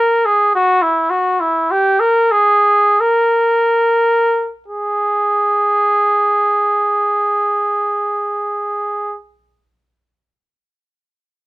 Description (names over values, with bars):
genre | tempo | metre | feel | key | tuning
classical, free, expressive piece for unaccompanied trumpet | 29-55 BPM | 4/4 | rubato | unclear | A4 = 437 Hz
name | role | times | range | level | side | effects
warm trumpet | solo | 0.0-9.2 s | E4 to A#4 | -13 LUFS | equal | none
room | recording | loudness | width
light reverb | none | -13 LUFS | side -18 dB against mid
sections
0.0-4.7 A section; 4.7-10.1 B section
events
slowing down 0.0-4.7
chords
none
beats
0.51 1.70 3.00 | 4.69 6.04 7.36 8.74